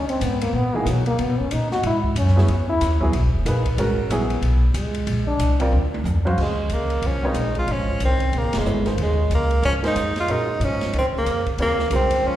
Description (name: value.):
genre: modal jazz.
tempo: 185 BPM.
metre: 4/4.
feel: swing 62% on 8ths.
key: Eb dorian from 6.4 s.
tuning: A4 = 440 Hz.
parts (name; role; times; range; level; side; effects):
breathy trombone; second line; 0.0-12.4 s; Db3 to F#4; -26 LUFS; left 1 dB; plate reverb, slapback echo.
upright bass; bass; 0.0-12.4 s; Eb1 to C#3; -21 LUFS; equal; none.
open jazz drum kit; drums; 0.1-12.2 s; crash cymbal, hi-hat, kick drum, ride cymbal, snare drum, toms; -30 LUFS; equal; none.
warm upright piano; accompaniment; 0.7-12.4 s; Db3 to E#5; -26 LUFS; right 2 dB; plate reverb, slapback echo.
clear tenor saxophone; melody; 6.4-12.4 s; Ab3 to F4; -22 LUFS; right 1 dB; plate reverb, slapback echo.
room: moderate club reverb, RT60 0.7 s.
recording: live gig heard through the venue's PA, recital hall reverb.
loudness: -18 LUFS.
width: side -13 dB against mid.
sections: 0.0-6.4 A section; 6.4-12.4 B section.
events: trombone solo 0.0-6.4; drum fill 5.7-6.4; band accent 8.5.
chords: 0.0 G#madd9; 1.2 C#m9; 5.1 A#add9; 6.4 Eb9sus4.